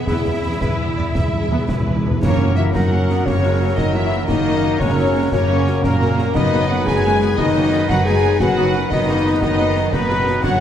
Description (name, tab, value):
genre	cinematic, heroic adventure film score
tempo	117 BPM (dotted quarters)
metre	12/8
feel	straight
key	F# mixolydian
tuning	A4 = 440 Hz
part	rich symphonic violin section	melody	0.0-10.6 s	A#4 to G#5	-28 LUFS	left 2 dB	none
part	rich symphonic violin section	second line	0.0-10.6 s	A#4 to G#5	-29 LUFS	left 1 dB	none
part	warm symphonic viola section	accompaniment	0.0-10.5 s	A#3 to G#4	-28 LUFS	right 1 dB	none
part	warm French horn section	sustained chords	0.0-10.6 s	A#3 to G#4	-22 LUFS	left 4 dB	none
part	concert harp	arpeggios	0.0-10.6 s	E2 to B5	-28 LUFS	left 6 dB	none
part	rich symphonic cello section	bass	0.0-10.6 s	A#2 to E4	-25 LUFS	right 2 dB	none
part	rich symphonic double bass section	bass	0.1-10.6 s	F#1 to E2	-22 LUFS	right 2 dB	none
part	concert snare drum, concert bass drum and clash cymbals	drums	0.1-10.6 s	none	-25 LUFS	equal	none
part	timpani	percussion	0.1-2.7, 6.4-6.8 s	E2 to F#2	-23 LUFS	equal	none
part	bright clarinet	second line	2.2-10.6 s	F#3 to D#4	-29 LUFS	left 1 dB	none
part	concert flute	second line	2.2-10.6 s	A#4 to G#5	-28 LUFS	left 2 dB	none
part	clear trombone section	sustained chords	2.2-10.6 s	C#3 to F#3	-27 LUFS	right 4 dB	none
part	bright trumpet section	stabs	2.2-10.6 s	A#4 to C#5	-26 LUFS	equal	none
room	wet scoring stage reverb, RT60 1.9 s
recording	dark, warm production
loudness	-15 LUFS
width	side -9 dB against mid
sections	0.0-2.2 A section; 2.2-10.6 B section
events	timpani fill 0.1-2.2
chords	0.0 E; 2.2 F#; 6.3 B/F#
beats	| 0.08 0.62 1.15 1.69 | 2.22 2.75 3.26 3.77 | 4.29 4.80 5.32 5.83 | 6.35 6.86 7.38 7.89 | 8.40 8.91 9.42 9.92 | 10.43